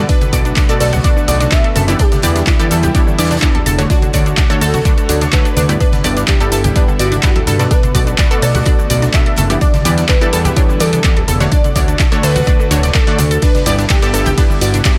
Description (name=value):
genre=progressive house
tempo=126 BPM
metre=4/4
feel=straight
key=D major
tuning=A4 = 443 Hz
part: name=lush unison pad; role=sustained chords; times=0.0-15.0 s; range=D3 to C#5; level=-27 LUFS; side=equal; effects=chorus, sidechain pumping
part: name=analog pluck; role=arpeggios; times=0.0-14.9 s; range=D3 to D6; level=-23 LUFS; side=equal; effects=chorus, sidechain pumping, digital delay
part: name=unison pluck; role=stabs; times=0.0-15.0 s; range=G2 to D5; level=-23 LUFS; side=equal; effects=vintage 12-bit sampler grit, sidechain pumping, digital delay
part: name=fat analog bass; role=bass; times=0.0-14.8 s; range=D1 to G2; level=-18 LUFS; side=equal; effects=sidechain pumping
part: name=plucky unison lead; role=melody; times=0.1-15.0 s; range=D4 to E5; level=-24 LUFS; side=equal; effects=subtle chorus, digital delay
part: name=big rock drum kit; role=drums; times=0.1-15.0 s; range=hi-hat, snare drum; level=-34 LUFS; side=equal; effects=none
part: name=electronic kick drum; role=drums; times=0.1-15.0 s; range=none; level=-15 LUFS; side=equal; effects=none
part: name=house drum kit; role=drums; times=0.1-15.0 s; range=handclaps, hi-hat, ride cymbal, shaker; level=-23 LUFS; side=equal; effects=none
part: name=congas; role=percussion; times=0.2-14.8 s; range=none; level=-26 LUFS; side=equal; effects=none
room=little or no reverb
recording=none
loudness=-13 LUFS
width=mono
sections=0.0-15.0 A section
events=none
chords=0.1 Bm7; 2.0 Em7; 3.9 Dmaj7; 5.8 G6; 7.7 Bm7; 9.6 Em7; 11.5 Dmaj7; 13.4 G6